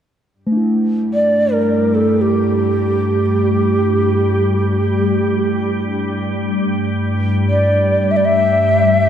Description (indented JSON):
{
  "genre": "world meditative, free-time meditation music",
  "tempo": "free time",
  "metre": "none",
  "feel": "none",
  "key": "unclear",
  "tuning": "A4 = 440 Hz",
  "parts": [
    { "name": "organ-like drone", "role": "drone", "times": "1.4-9.1 s", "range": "G2 to G3", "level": "-18 LUFS", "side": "equal", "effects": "ensemble chorus, built-in reverb" },
    { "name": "quartz singing bowl", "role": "texture", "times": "0.5-7.7 s", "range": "A3 to E4", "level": "-20 LUFS", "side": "equal", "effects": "shimmer reverb" },
    { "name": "breathy hollow Native American-style cedar flute", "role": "melody", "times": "1.1-9.1 s", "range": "G4 to E5", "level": "-16 LUFS", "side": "equal", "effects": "shimmer reverb, diffuse ambient delay" }
  ],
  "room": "wet church reverb, RT60 2.9 s",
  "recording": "dark, warm production",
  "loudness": "-14 LUFS",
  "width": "side -9 dB against mid",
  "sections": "0.3-9.1 A section",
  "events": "none",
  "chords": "none",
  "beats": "free time"
}